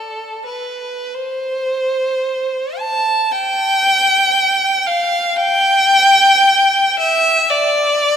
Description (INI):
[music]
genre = classical, free, expressive piece for unaccompanied violin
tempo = 35-63 BPM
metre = 4/4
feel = rubato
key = unclear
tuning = A4 = 440 Hz
[part]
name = rich violin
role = solo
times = 0.0-8.2 s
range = A4 to A5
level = -13 LUFS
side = equal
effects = none
[sound]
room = wet church reverb, RT60 2.7 s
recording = none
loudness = -12 LUFS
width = side -8 dB against mid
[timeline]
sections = 0.0-1.1 A section; 1.1-8.2 B section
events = none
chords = none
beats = | 1.14 2.25 3.32 4.37 | 5.39 6.45 7.52